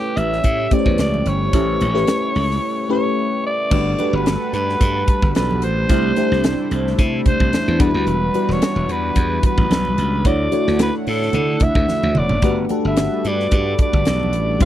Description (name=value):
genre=polished 1980s jazz-funk pop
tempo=110 BPM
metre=4/4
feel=swing 54% on 16ths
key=unclear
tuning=A4 = 440 Hz
part: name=growling alto saxophone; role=melody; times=0.0-14.7 s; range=G4 to E5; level=-22 LUFS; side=equal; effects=none
part: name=FM electric piano with soft pad layer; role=accompaniment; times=0.0-14.7 s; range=G3 to C#5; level=-22 LUFS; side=left 1 dB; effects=phaser, analog chorus
part: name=chorused pulse-width pad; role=sustained chords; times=0.0-14.7 s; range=C3 to F#5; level=-27 LUFS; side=equal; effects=none
part: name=glassy slap bass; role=bass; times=0.2-14.7 s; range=E1 to D3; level=-21 LUFS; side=equal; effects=none
part: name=crisp fusion drum kit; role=drums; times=0.2-14.7 s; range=crash cymbal, hi-hat, kick drum, snare drum, toms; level=-18 LUFS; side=equal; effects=none
part: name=congas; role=percussion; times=0.4-14.7 s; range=none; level=-28 LUFS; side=right 4 dB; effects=none
room=light reverb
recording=dry, close 1970s-style studio recording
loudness=-16 LUFS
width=side -12 dB against mid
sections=0.0-3.7 A section; 3.7-14.7 B section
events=break 2.6-3.7; drum fill 11.9-12.4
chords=0.0 A7; 3.7 Gmaj7; 5.9 C6; 7.8 Em7; 10.2 Dmaj7; 12.4 Gmaj7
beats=0.45 0.99 | 1.54 2.08 2.63 3.17 | 3.72 4.26 4.81 5.35 | 5.89 6.44 6.98 7.53 | 8.07 8.62 9.16 9.71 | 10.25 10.79 11.34 11.88 | 12.43 12.97 13.52 14.06 | 14.60